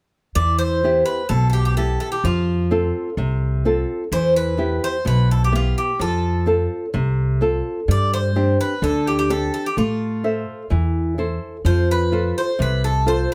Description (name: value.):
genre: greek folk, Greek bouzouki band.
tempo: 128 BPM.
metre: 4/4.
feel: straight.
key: E phrygian.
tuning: A4 = 440 Hz.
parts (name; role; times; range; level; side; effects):
Greek bouzouki; melody; 0.4-13.3 s; F4 to D5; -24 LUFS; equal; none.
nylon-string guitar; accompaniment; 0.4-13.3 s; B2 to E5; -24 LUFS; equal; none.
upright bass; bass; 0.4-13.3 s; B1 to A2; -23 LUFS; equal; none.
room: moderate studio reverb, RT60 0.6 s.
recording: none.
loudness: -20 LUFS.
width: mono.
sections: 0.4-13.3 A section.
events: none.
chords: 0.4 Em; 2.2 F; 4.1 Em; 6.0 F; 7.9 Gsus4; 9.8 Am; 11.6 F.